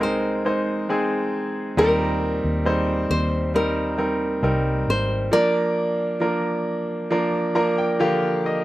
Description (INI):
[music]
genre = pop ballad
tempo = 68 BPM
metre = 4/4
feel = straight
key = Eb major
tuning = A4 = 440 Hz
[part]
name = nylon-string guitar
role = melody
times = 0.0-8.0 s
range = Bb4 to D5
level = -25 LUFS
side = equal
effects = none
[part]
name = clear grand piano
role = accompaniment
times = 0.0-8.6 s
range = Bb2 to Bb5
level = -21 LUFS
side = equal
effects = slapback echo
[part]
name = vintage muted fingered electric bass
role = bass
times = 0.0-5.3 s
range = Ab1 to Eb2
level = -25 LUFS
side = equal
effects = none
[sound]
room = little or no reverb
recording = recorded outdoors, with no room sound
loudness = -20 LUFS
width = side -16 dB against mid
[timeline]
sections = 0.0-8.6 A section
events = grand piano fill 7.1-8.6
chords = 0.0 Abadd9/C; 1.8 Eb6; 5.3 Bb